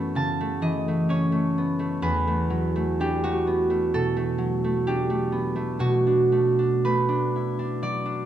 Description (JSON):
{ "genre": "classical, solo harp piece", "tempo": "63 BPM", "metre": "4/4", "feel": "rubato", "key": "unclear", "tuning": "A4 = 441 Hz", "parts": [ { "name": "concert harp", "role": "solo", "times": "0.0-8.3 s", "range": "E2 to A5", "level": "-22 LUFS", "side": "right 1 dB", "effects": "none" } ], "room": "moderate concert hall reverb, RT60 1.9 s", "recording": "dark, warm production", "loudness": "-22 LUFS", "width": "side -11 dB against mid", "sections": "0.0-8.3 A section", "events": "none", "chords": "0.0 F#m7; 2.0 Em11; 5.8 Bm7" }